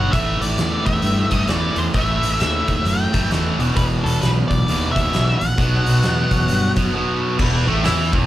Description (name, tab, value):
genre	blues rock power trio and southern rock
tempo	132 BPM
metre	4/4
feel	swing 62% on 8ths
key	unclear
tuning	A4 = 439 Hz
part	octave-fuzz lead guitar	melody	0.0-6.7 s	A4 to G5	-24 LUFS	equal	distortion
part	cranked stack guitar	riff	0.0-8.3 s	E2 to E4	-21 LUFS	right 1 dB	overdrive
part	fuzz fingered electric bass	bass	0.0-8.3 s	E1 to G2	-20 LUFS	equal	overdrive
part	oversized low-tuned drum kit	drums	0.1-8.2 s	crash cymbal, hi-hat, kick drum, snare drum	-23 LUFS	equal	none
room	little or no reverb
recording	live gig heard through the venue's PA, club reverb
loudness	-16 LUFS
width	side -14 dB against mid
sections	0.0-7.4 A section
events	break 6.9-7.4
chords	0.1 A5; 3.5 E5; 5.6 B5; 7.4 Esus4